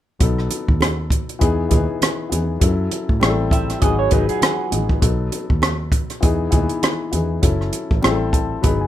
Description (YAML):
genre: lush 1970s-style soul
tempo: 100 BPM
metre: 4/4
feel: swing 58% on 16ths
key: E major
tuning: A4 = 440 Hz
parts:
  - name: warm grand piano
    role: accompaniment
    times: 0.2-8.9 s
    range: E3 to B5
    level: -23 LUFS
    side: left 5 dB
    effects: plate reverb
  - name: vintage muted fingered electric bass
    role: bass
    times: 0.2-8.9 s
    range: F#1 to A2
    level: -22 LUFS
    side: equal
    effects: none
  - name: compact cocktail drum kit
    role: drums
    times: 0.2-8.8 s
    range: hi-hat, kick drum, rim click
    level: -18 LUFS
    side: right 1 dB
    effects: none
  - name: congas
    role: percussion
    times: 0.5-8.8 s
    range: none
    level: -30 LUFS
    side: right 4 dB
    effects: none
  - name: electric guitar through a small old amp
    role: riff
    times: 3.5-5.0 s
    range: B3 to E5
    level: -23 LUFS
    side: right 10 dB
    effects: phaser
room: light reverb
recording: rough home demo mix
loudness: -16 LUFS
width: side -12 dB against mid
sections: 0.2-8.9 A section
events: grand piano fill 3.2-5.0, 8.0-8.9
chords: 0.2 B7; 1.4 Emaj7; 2.6 F#m7; 3.2 Am7; 3.8 G#m7; 5.0 B7; 6.2 Emaj7; 7.4 F#m7; 8.0 Am7